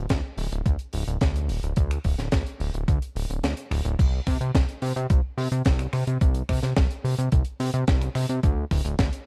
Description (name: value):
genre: nu-disco, nu disco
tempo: 108 BPM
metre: 4/4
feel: straight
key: unclear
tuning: A4 = 435 Hz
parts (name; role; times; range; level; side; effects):
- fat analog bass; bass; 0.0-9.1 s; D1 to C3; -28 LUFS; equal; none
- electronic kick drum; drums; 0.1-9.1 s; none; -25 LUFS; equal; none
- tight funk drum kit; drums; 0.1-9.2 s; crash cymbal, finger snaps, hi-hat, snare drum; -34 LUFS; equal; none
room: little or no reverb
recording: dark, warm production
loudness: -25 LUFS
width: mono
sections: 0.0-4.0 A section; 4.0-9.3 B section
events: kick drops out 3.4-4.0; drop 4.0-9.3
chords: none